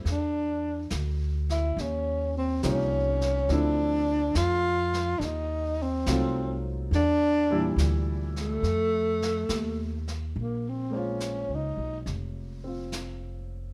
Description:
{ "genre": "jazz", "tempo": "70 BPM", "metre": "4/4", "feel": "swing 68% on 8ths", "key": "D minor, Bb minor from 10.3 s", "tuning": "A4 = 442 Hz", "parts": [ { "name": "warm baby grand piano", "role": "accompaniment", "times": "0.0-13.7 s", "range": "Bb2 to C5", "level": "-36 LUFS", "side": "equal", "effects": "none" }, { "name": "upright bass", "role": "bass", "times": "0.0-13.7 s", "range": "F1 to F2", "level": "-32 LUFS", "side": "equal", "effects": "none" }, { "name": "breathy tenor saxophone", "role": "melody", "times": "0.1-12.0 s", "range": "A3 to F4", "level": "-30 LUFS", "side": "equal", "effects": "none" }, { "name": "jazz brush drum kit", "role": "drums", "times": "0.1-13.7 s", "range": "brushed snare drum, hi-hat, snare drum", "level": "-41 LUFS", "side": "equal", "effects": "none" } ], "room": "light reverb", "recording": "none", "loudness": "-28 LUFS", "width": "mono", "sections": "0.0-10.3 A section; 10.3-13.7 B section", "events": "tenor saxophone solo 10.3-13.7", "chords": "0.0 Dsus2; 1.8 Eb9; 3.5 Dm7; 5.2 D#dim7; 6.9 Em7b5; 8.6 F7; 10.3 Bbm7", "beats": "| 0.04 0.90 1.76 2.62 | 3.48 4.34 5.20 6.06 | 6.92 7.77 8.63 9.49 | 10.35 11.20 12.06 12.91" }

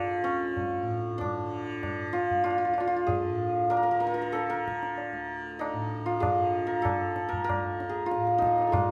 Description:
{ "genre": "indian classical, Hindustani", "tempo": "96 BPM", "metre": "4/4", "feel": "straight", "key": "D raga todi", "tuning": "A4 = 440 Hz", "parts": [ { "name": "santur", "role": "melody", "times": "0.0-8.9 s", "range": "C#4 to A5", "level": "-30 LUFS", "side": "equal", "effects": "none" }, { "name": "tanpura", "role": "drone", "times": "0.0-8.9 s", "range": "D2 to D3", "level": "-38 LUFS", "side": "equal", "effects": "none" }, { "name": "tabla", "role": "percussion", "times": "0.6-8.9 s", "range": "none", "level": "-38 LUFS", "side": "equal", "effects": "none" } ], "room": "moderate large studio reverb, RT60 0.9 s", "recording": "band playing live in one room", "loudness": "-29 LUFS", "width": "mono", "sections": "0.0-8.7 A section", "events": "none", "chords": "none", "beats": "0.57 | 1.21 1.84 2.46 3.09 | 3.72 4.35 4.98 5.60 | 6.23 6.85 7.48 8.10 | 8.72" }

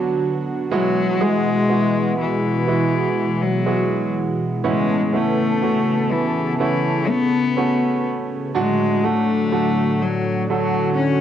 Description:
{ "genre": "pop", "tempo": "61 BPM", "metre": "4/4", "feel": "straight", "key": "A major", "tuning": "A4 = 440 Hz", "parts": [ { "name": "rich cello", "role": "melody", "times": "0.0-11.2 s", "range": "E3 to C#4", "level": "-21 LUFS", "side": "left 6 dB", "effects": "cassette tape" }, { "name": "bright grand piano", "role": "accompaniment", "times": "0.0-11.2 s", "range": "A2 to A4", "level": "-22 LUFS", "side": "right 7 dB", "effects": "cassette tape" }, { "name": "warm analog pad", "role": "sustained chords", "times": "0.0-11.2 s", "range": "A2 to A5", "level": "-23 LUFS", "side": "right 1 dB", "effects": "chorus, cassette tape" } ], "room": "moderate booth ambience, RT60 0.2 s", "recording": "home recording on cassette", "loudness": "-17 LUFS", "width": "side -10 dB against mid", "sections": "0.0-11.2 A section", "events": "none", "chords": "0.0 Bm; 0.7 Eadd9/B; 4.6 Aadd9; 8.6 D/A", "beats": "| 0.71 1.69 2.67 3.65 | 4.64 5.62 6.61 7.58 | 8.55 9.53 10.50" }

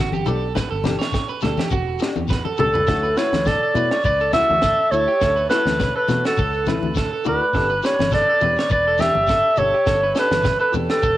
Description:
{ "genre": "highlife guitar band", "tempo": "103 BPM", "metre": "4/4", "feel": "swing 55% on 16ths", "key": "D major", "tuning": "A4 = 442 Hz", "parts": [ { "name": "electric guitar at the edge of break-up", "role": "arpeggios", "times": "0.0-11.2 s", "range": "F#4 to D5", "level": "-27 LUFS", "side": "right 7 dB", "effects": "cassette tape, tape echo" }, { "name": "fingered electric bass", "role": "bass", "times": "0.0-11.2 s", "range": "E1 to B2", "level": "-27 LUFS", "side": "equal", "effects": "none" }, { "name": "congas", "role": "percussion", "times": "0.1-10.9 s", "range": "none", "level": "-27 LUFS", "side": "left 5 dB", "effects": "none" }, { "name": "shekere", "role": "percussion", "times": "0.1-11.2 s", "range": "none", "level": "-30 LUFS", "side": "left 4 dB", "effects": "none" }, { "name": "flamenco guitar", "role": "accompaniment", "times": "0.3-10.9 s", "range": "F#3 to G4", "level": "-30 LUFS", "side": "left 7 dB", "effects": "cassette tape" }, { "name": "tight funk drum kit", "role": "drums", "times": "0.6-11.2 s", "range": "kick drum, snare drum, toms", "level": "-25 LUFS", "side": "equal", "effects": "cassette tape" }, { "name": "mellow clarinet", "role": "melody", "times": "2.6-11.2 s", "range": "A4 to E5", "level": "-18 LUFS", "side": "equal", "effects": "cassette tape, tape echo" } ], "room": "moderate spring reverb, RT60 2.0 s", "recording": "home recording on cassette", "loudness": "-17 LUFS", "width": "side -14 dB against mid", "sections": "0.0-2.9 A section; 2.9-11.2 B section", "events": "drum fill 2.3-2.9", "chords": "0.0 G; 2.9 Dadd9; 7.5 G", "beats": "| 0.56 1.14 1.72 2.30 | 2.88 3.46 4.05 4.63 | 5.21 5.79 6.38 6.96 | 7.54 8.12 8.70 9.29 | 9.87 10.45 11.03" }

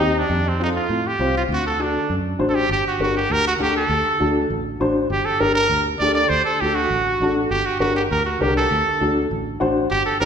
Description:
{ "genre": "latin", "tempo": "200 BPM", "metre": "4/4", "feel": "straight", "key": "G harmonic minor", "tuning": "A4 = 440 Hz", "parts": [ { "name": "bright trumpet", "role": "melody", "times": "0.0-10.3 s", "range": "C4 to D5", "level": "-20 LUFS", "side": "right 2 dB", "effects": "none" }, { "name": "dark upright piano", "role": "accompaniment", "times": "0.0-10.3 s", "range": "C4 to F#5", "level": "-22 LUFS", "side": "left 2 dB", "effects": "none" }, { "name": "fingered electric bass", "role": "bass", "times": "0.0-10.3 s", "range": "G1 to A2", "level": "-26 LUFS", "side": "equal", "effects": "none" } ], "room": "wet recital hall reverb, RT60 1.7 s", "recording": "recorded in a church or concert hall", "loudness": "-17 LUFS", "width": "side -7 dB against mid", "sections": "0.0-2.7 A section; 2.7-10.3 B section", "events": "upright piano fill 9.5-9.9", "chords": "0.3 F; 1.5 D7; 2.7 Gm; 3.9 D7; 5.1 Gm; 6.3 D; 7.5 Gm; 8.7 D7", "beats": "| 0.29 0.59 0.89 1.20 | 1.50 1.80 2.10 2.40 | 2.70 3.00 3.30 3.60 | 3.90 4.20 4.50 4.80 | 5.11 5.41 5.71 6.01 | 6.31 6.61 6.91 7.21 | 7.51 7.81 8.11 8.41 | 8.71 9.01 9.31 9.61 | 9.91 10.21" }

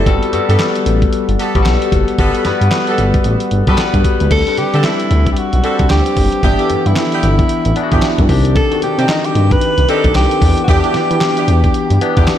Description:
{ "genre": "R&B, new jack swing", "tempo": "113 BPM", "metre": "4/4", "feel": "swing 60% on 16ths", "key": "G major", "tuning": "A4 = 441 Hz", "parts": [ { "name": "barky tine electric piano", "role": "accompaniment", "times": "0.0-12.4 s", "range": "Eb3 to F#5", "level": "-17 LUFS", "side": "left 4 dB", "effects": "phaser" }, { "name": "warm horn section", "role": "stabs", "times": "0.0-12.3 s", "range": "B3 to A4", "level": "-22 LUFS", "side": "right 2 dB", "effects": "tape echo" }, { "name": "smooth gliding synth bass", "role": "bass", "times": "0.0-12.2 s", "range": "F#1 to E3", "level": "-14 LUFS", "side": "equal", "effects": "none" }, { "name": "dusty soul sampler-style drum kit", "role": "drums", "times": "0.1-12.4 s", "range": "crash cymbal, handclaps, hi-hat, kick drum, snare drum", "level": "-17 LUFS", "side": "equal", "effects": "none" }, { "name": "breathy tenor saxophone", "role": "melody", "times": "4.3-12.3 s", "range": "Eb4 to B4", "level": "-17 LUFS", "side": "right 1 dB", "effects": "tape echo" } ], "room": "moderate lush hall reverb, RT60 2.6 s", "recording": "dreamy mix soaked in reverb", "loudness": "-11 LUFS", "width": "side -10 dB against mid", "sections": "0.0-4.3 A section; 4.3-12.4 B section", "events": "tine electric piano fill 3.5-4.3", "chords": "0.1 Gmaj9; 4.3 D7sus4; 6.4 G6; 8.3 Cmadd9; 10.4 Em7", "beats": "| 0.06 0.59 1.12 1.65 | 2.19 2.72 3.25 3.78 | 4.31 4.84 5.37 5.90 | 6.43 6.96 7.50 8.03 | 8.56 9.09 9.62 10.15 | 10.68 11.21 11.74 12.27" }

